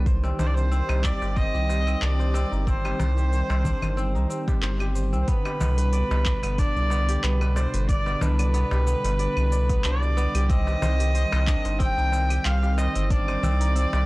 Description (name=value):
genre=organic downtempo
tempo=92 BPM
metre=4/4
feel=swing 54% on 16ths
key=C harmonic minor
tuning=A4 = 442 Hz
part: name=warm analog pad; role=sustained chords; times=0.0-14.1 s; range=B2 to G4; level=-32 LUFS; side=right 1 dB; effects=chorus, sidechain pumping
part: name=kora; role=arpeggios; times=0.0-14.1 s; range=B3 to D5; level=-34 LUFS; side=equal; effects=analog delay
part: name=round analog bass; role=bass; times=0.0-14.1 s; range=G1 to C2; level=-23 LUFS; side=equal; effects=tube saturation, sidechain pumping
part: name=bronze singing bowl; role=texture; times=0.0-5.3 s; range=none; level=barely audible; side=none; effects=none
part: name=electronic kick drum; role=drums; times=0.1-13.2 s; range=none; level=-24 LUFS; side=equal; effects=none
part: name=organic electronic drum kit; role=drums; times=0.1-14.1 s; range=claves, handclaps, hi-hat, shaker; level=-34 LUFS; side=equal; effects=none
part: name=darbuka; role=percussion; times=0.2-14.1 s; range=none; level=-34 LUFS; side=left 1 dB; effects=none
part: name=clear kamancheh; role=melody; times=0.4-14.1 s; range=B4 to G5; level=-29 LUFS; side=equal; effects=analog delay
room=studio reverb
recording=dry, gritty hardware recording, transformer saturation, cassette tape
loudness=-21 LUFS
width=side -21 dB against mid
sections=0.0-5.3 A section; 5.3-14.1 B section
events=band accent 4.6-5.0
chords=0.1 Cmadd9; 5.3 G; 10.5 Cmadd9